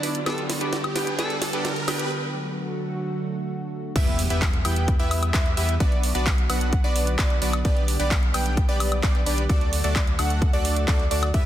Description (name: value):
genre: EDM, festival progressive house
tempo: 130 BPM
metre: 4/4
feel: straight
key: E minor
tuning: A4 = 440 Hz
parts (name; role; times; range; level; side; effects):
- breathy alto saxophone; melody; 0.0-1.3 s; D4 to A4; -34 LUFS; equal; digital delay
- lush unison pad; sustained chords; 0.0-11.5 s; D3 to G4; -32 LUFS; right 1 dB; chorus, sidechain pumping
- supersaw stab; riff; 0.0-11.5 s; A3 to G5; -29 LUFS; right 1 dB; sidechain pumping, low-pass filter, digital delay
- house drum kit; drums; 0.0-11.4 s; crash cymbal, handclaps, hi-hat, snare drum, woodblock; -29 LUFS; equal; overdrive
- riser and impact; sound effects; 0.0-5.8 s; none; -32 LUFS; equal; none
- plucky unison lead; arpeggios; 4.0-11.5 s; D5 to G5; -31 LUFS; equal; sidechain pumping, digital delay
- saturated sub bass; bass; 4.0-11.5 s; B1 to E2; -25 LUFS; equal; sidechain pumping
- electronic kick drum; drums; 4.0-11.4 s; none; -22 LUFS; equal; overdrive
room: light reverb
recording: dense, heavily limited modern master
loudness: -21 LUFS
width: side -12 dB against mid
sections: 0.0-4.0 A section; 4.0-11.5 B section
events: build-up 0.0-4.0; drum fill 0.0-2.1; riser 0.0-2.1; break 2.1-4.0; drop 4.0-11.5; impact 4.0-5.8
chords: 0.3 G; 2.1 D; 4.0 Em; 5.8 Bm; 7.6 G/B; 9.5 D